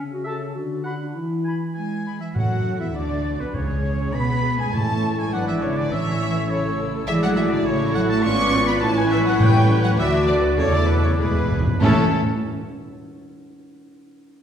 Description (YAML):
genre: quick classical-period movement for symphony orchestra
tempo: 101 BPM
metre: 2/4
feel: straight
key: A major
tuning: A4 = 440 Hz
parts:
  - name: dark clarinet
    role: second line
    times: 0.0-12.1 s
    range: B3 to B4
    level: -29 LUFS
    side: left 1 dB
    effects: none
  - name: mellow French horn section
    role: sustained chords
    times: 0.0-12.1 s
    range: B2 to F#4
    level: -26 LUFS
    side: left 3 dB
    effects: none
  - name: clear oboe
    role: second line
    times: 0.2-12.1 s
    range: A4 to C#6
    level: -31 LUFS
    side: right 2 dB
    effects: none
  - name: silver concert flute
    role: second line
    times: 0.3-12.2 s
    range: B4 to E6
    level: -34 LUFS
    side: left 1 dB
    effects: none
  - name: rich chamber violin section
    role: melody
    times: 1.7-12.2 s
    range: A4 to C#6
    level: -28 LUFS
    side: left 2 dB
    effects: none
  - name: warm studio cello section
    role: bass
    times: 1.8-12.2 s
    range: B2 to C#4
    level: -27 LUFS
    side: right 2 dB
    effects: none
  - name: rich chamber violin section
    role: second line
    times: 2.4-12.2 s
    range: A3 to B4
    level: -34 LUFS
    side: equal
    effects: none
  - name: rich chamber viola section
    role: accompaniment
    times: 2.4-12.2 s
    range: A3 to C#5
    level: -31 LUFS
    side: equal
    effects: none
  - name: mellow trumpet section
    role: stabs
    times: 2.4-12.1 s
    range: B4 to B5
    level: -30 LUFS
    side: right 1 dB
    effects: none
  - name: rich chamber double bass section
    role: bass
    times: 2.4-12.2 s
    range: G#1 to B2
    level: -25 LUFS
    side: right 2 dB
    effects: none
  - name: timpani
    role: percussion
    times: 2.4-5.3, 9.4-12.1 s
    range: E2 to A2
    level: -24 LUFS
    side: right 1 dB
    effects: none
room: wet scoring stage reverb, RT60 1.8 s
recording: heard from further back in the room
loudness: -18 LUFS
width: side -8 dB against mid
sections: 0.0-2.4 A section; 2.4-11.8 B section; 11.8-13.0 C section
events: timpani fill 11.2-11.8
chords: 0.0 A/C#; 0.5 Bm/D; 1.1 E; 2.4 A5; 3.0 Bm/D; 3.6 G#madd11/C#; 4.7 A; 5.3 E7/G#; 5.9 A; 7.1 E7/A; 7.7 A; 8.2 G#dim7; 8.8 A; 9.4 A7; 10.0 D; 10.6 E7sus4; 11.2 E7; 11.8 A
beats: 0.55 | 1.15 1.76 | 2.36 2.96 | 3.55 4.15 | 4.74 5.33 | 5.92 6.50 | 7.08 7.66 | 8.24 8.82 | 9.41 9.99 | 10.59 11.20 | 11.82